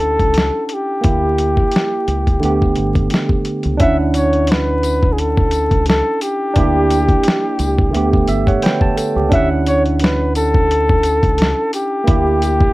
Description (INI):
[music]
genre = lo-fi hip hop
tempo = 87 BPM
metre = 4/4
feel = swing 55% on 16ths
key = D major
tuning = A4 = 442 Hz
[part]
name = breathy flugelhorn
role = melody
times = 0.0-12.7 s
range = G4 to E5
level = -18 LUFS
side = left 1 dB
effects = low-pass filter, plate reverb
[part]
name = barky tine electric piano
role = accompaniment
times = 0.0-12.7 s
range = D3 to A5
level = -19 LUFS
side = right 3 dB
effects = cassette tape, low-pass filter
[part]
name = deep dub fingered electric bass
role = bass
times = 0.0-12.7 s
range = G1 to D2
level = -19 LUFS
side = equal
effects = none
[part]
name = lo-fi sampler-style drum kit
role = drums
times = 0.2-12.7 s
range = hi-hat, kick drum, snare drum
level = -16 LUFS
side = equal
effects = overdrive
[part]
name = tambourine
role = percussion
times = 4.2-12.6 s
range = none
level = -34 LUFS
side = left 8 dB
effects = none
[sound]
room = light reverb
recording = vinyl crackle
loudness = -13 LUFS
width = side -19 dB against mid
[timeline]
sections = 0.0-3.8 A section; 3.8-12.7 B section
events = none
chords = 0.0 Dmaj9; 1.0 Gm6/D; 2.4 A7sus4; 3.8 Dmaj9; 6.6 Gm6/D; 7.9 A7sus4; 9.3 Dmaj9; 12.1 Gm6/D